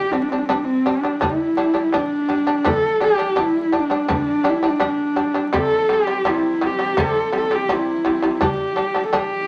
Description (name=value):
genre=mongolian traditional, Mongolian folk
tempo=83 BPM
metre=4/4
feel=straight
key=unclear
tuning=A4 = 439 Hz
part: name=dark horsehead fiddle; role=melody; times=0.0-9.5 s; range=C4 to A4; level=-21 LUFS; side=equal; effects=none
part: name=shamisen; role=arpeggios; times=0.0-9.4 s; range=C3 to D4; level=-24 LUFS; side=equal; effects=none
part: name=frame drum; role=percussion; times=0.1-9.3 s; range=none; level=-30 LUFS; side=equal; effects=none
room=moderate studio reverb, RT60 0.6 s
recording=vinyl crackle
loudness=-19 LUFS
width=mono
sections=0.0-9.5 A section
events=none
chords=0.0 G5; 5.5 C5; 8.4 G5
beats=0.49 1.21 1.93 | 2.65 3.37 4.09 4.80 | 5.53 6.24 6.96 7.68 | 8.40 9.12